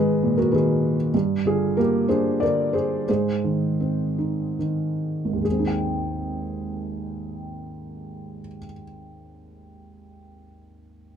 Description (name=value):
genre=classical, lyrical solo piano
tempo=68-99 BPM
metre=3/4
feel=rubato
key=Ab lydian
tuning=A4 = 440 Hz
part: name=felt-muted upright piano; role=solo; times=0.0-11.2 s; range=Ab1 to G5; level=-22 LUFS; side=equal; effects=none
room=light reverb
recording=dark, warm production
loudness=-21 LUFS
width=side -8 dB against mid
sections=0.0-5.5 A section; 5.5-10.5 B section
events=slowing down 1.1-5.5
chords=0.0 Abm9; 1.1 Gm7; 3.1 Ab; 5.5 Abmaj7